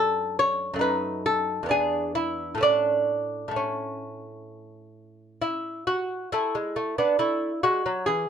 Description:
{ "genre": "classical, baroque-style dance for lute", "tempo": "63-71 BPM", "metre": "4/4", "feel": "rubato", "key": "unclear", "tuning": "A4 = 440 Hz", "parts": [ { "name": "lute", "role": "solo", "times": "0.0-8.3 s", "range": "E2 to C#5", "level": "-23 LUFS", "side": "equal", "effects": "none" } ], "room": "light reverb", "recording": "dark, warm production", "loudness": "-23 LUFS", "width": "side -8 dB against mid", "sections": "0.0-6.3 A section; 6.3-8.3 B section", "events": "none", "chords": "0.0 D/F#; 0.8 B7/F#; 1.7 E7; 2.6 A; 6.3 F#m9" }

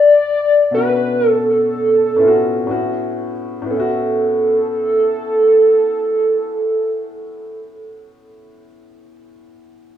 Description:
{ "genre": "R&B", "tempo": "58-64 BPM", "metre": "4/4", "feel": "swing 60% on 16ths", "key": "A major", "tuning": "A4 = 440 Hz", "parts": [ { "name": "hollow square lead", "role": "melody", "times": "0.0-8.6 s", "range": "A4 to D5", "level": "-14 LUFS", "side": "equal", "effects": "chorus" }, { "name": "warm upright piano", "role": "accompaniment", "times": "0.7-10.0 s", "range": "A2 to F#4", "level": "-23 LUFS", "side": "left 3 dB", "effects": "none" } ], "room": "wet studio ambience, RT60 0.5 s", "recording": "rough home demo mix, small room reverb", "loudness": "-13 LUFS", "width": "side -10 dB against mid", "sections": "0.0-3.7 A section; 3.7-7.9 B section", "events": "slowing down 0.0-3.7", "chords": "0.0 Bm9; 2.7 A69" }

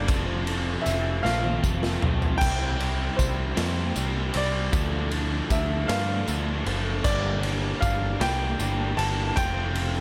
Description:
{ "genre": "indie rock", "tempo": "52 BPM (dotted quarters)", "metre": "6/8", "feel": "straight", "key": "unclear", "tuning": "A4 = 439 Hz", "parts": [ { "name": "clear upright piano", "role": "melody", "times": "0.0-10.0 s", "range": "C5 to A5", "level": "-33 LUFS", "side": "equal", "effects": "plate reverb" }, { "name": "cranked stack guitar", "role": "riff", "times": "0.0-10.0 s", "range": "F2 to E4", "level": "-35 LUFS", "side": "equal", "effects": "overdrive, analog chorus, analog delay" }, { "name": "crunchy overdriven guitar", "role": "riff", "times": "0.0-10.0 s", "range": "F3 to A4", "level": "-36 LUFS", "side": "equal", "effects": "none" }, { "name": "picked electric bass", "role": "bass", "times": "0.0-10.0 s", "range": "F1 to G2", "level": "-30 LUFS", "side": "equal", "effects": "none" }, { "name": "raw garage drum kit", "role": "drums", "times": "0.1-9.9 s", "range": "crash cymbal, kick drum, ride cymbal, snare drum, toms", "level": "-31 LUFS", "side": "equal", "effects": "none" }, { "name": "tambourine", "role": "percussion", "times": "0.1-10.0 s", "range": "none", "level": "-43 LUFS", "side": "equal", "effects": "none" } ], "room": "light reverb", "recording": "none", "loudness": "-26 LUFS", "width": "mono", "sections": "0.0-10.0 A section", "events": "drum fill 1.2-2.4", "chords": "0.1 F; 2.4 C; 4.7 Dm; 7.1 Gm; 9.4 F" }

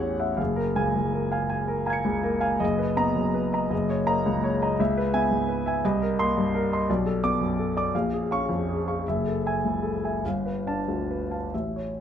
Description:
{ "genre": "classical, impressionist solo piano", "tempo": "44-59 BPM (dotted quarters)", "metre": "6/8", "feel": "rubato", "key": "unclear", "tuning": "A4 = 438 Hz", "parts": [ { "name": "warm grand piano", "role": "solo", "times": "0.0-12.0 s", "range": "F#1 to C#7", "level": "-23 LUFS", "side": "equal", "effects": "none" } ], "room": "light reverb", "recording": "close, detailed microphones", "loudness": "-23 LUFS", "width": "side -9 dB against mid", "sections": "0.0-12.0 A section", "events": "none", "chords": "0.4 F#maj9; 2.6 Bmaj7/F#; 3.7 D#m7/F#; 4.8 C#m7; 5.8 Cm7; 6.9 Bm7; 7.9 Bbm7; 9.0 F#m9; 10.2 G9" }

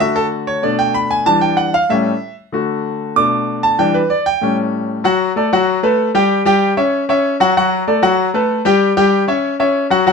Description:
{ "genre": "latin", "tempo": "191 BPM", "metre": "4/4", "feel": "straight", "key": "D major", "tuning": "A4 = 440 Hz", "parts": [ { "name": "clear concert grand piano", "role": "solo", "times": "0.0-10.1 s", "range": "A2 to D6", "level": "-13 LUFS", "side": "left 1 dB", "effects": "none" } ], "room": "moderate small room reverb, RT60 0.6 s", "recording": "none", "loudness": "-13 LUFS", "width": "side -5 dB against mid", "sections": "0.0-5.0 A section; 5.0-10.1 B section", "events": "grand piano solo 0.0-5.0", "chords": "0.0 D; 0.6 Bm7; 1.3 Em7; 1.9 A7; 2.5 D; 3.2 Bm7; 3.8 Em7; 4.4 A7; 5.0 D; 5.7 B5; 6.3 Em; 6.9 C#madd11; 7.6 D; 8.2 B5; 8.8 Em; 9.4 C#madd11" }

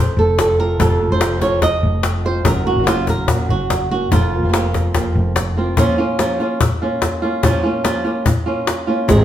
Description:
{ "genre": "flamenco", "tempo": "145 BPM", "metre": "4/4", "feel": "straight", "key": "unclear", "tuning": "A4 = 440 Hz", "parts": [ { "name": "flamenco guitar", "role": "melody", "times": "0.0-9.2 s", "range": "F2 to Eb5", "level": "-18 LUFS", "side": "right 2 dB", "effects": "none" }, { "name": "woody fretless electric bass", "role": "bass", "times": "0.0-5.7, 9.1-9.2 s", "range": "F1 to Ab1", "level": "-19 LUFS", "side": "equal", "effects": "none" }, { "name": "cajon", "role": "percussion", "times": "0.2-9.2 s", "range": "none", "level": "-19 LUFS", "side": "left 3 dB", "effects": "none" }, { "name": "flamenco guitar", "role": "stabs", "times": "0.4-5.8 s", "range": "C3 to Gb4", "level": "-25 LUFS", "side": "right 2 dB", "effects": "none" } ], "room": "wet large studio reverb, RT60 0.9 s", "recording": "band playing live in one room", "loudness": "-15 LUFS", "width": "side -11 dB against mid", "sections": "0.0-5.8 A section; 5.8-9.2 B section", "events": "none", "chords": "0.0 F; 2.5 Gb; 4.1 Fsus4; 5.8 Bbm" }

